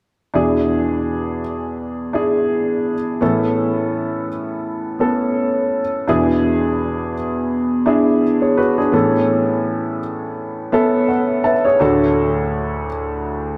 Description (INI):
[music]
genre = pop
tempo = 84 BPM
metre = 4/4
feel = swing 56% on 16ths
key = unclear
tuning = A4 = 440 Hz
[part]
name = clear grand piano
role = accompaniment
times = 0.3-13.6 s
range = D2 to A5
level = -18 LUFS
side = equal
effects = lush chorus
[sound]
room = wet plate reverb, RT60 3.5 s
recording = dreamy mix soaked in reverb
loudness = -18 LUFS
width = mono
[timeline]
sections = 0.3-6.1 A section; 6.1-13.6 B section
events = grand piano fill 10.4-11.8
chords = 0.3 E7; 3.2 Aadd9; 6.1 E7; 8.9 Aadd9; 11.8 D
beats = | 0.35 1.06 1.78 2.50 | 3.21 3.93 4.64 5.36 | 6.08 6.79 7.51 8.22 | 8.94 9.65 10.37 11.09 | 11.80 12.52 13.24